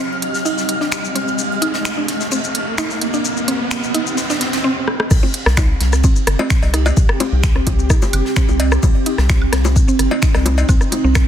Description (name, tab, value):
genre	minimal techno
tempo	129 BPM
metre	4/4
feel	straight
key	C minor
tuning	A4 = 445 Hz
part	mallet-like synth pluck	riff	0.0-11.1 s	C4 to Eb4	-24 LUFS	equal	chorus, cassette tape, sidechain pumping, ping-pong delay
part	riser	sound effects	0.0-4.6 s	none	-23 LUFS	right 1 dB	none
part	ethereal airy pad	texture	0.0-11.3 s	C4 to F6	-22 LUFS	right 2 dB	ensemble chorus, built-in reverb, tremolo, sidechain pumping
part	soft brush drum kit	drums	0.1-11.3 s	ride cymbal, snare drum	-30 LUFS	right 2 dB	high-pass filter on cymbals, soft clipping on snare, high-pass filter on snare, high-pass filter on room
part	garage drum kit	drums	0.2-11.3 s	crash cymbal, finger snaps, hi-hat, rim click, shaker	-23 LUFS	left 1 dB	soft clipping on snare
part	rubbery square bass	bass	5.1-11.3 s	G1 to C2	-16 LUFS	equal	sidechain pumping
part	electronic kick drum	drums	5.1-11.3 s	none	-14 LUFS	equal	none
part	electronic rim click, bongos, woodblock and cowbell	percussion	5.1-11.3 s	none	-21 LUFS	left 3 dB	soft clipping on snare, tape echo
room	light reverb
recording	dense, heavily limited modern master, faint mains hum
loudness	-14 LUFS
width	side -10 dB against mid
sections	0.0-5.1 A section; 5.1-11.3 B section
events	build-up 0.0-5.1; riser 0.0-4.6; filter sweep on synth arpeggio sound 0.0-5.1; drum fill 4.9; drop 5.1-11.3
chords	0.0 Cm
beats	0.46 0.92 | 1.39 1.85 2.32 2.78 | 3.25 3.71 4.18 4.64 | 5.11 5.57 6.04 6.50 | 6.97 7.43 7.90 8.36 | 8.83 9.29 9.76 10.22 | 10.69 11.15